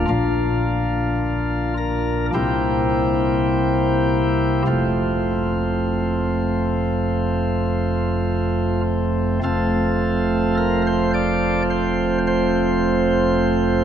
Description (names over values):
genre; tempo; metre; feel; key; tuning
classical, chorale-style piece for pipe organ; 50-54 BPM; 4/4; rubato; F major; A4 = 440 Hz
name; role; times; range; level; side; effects
chamber organ, sparkling flutes; solo; 0.0-13.8 s; F1 to D5; -18 LUFS; equal; none
room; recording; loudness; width
wet cathedral reverb, RT60 6.1 s; in a vast, echoing space; -18 LUFS; side -9 dB against mid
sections
0.0-9.4 A section; 9.4-13.8 A section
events
none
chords
0.1 Bb; 2.3 C7; 4.7 F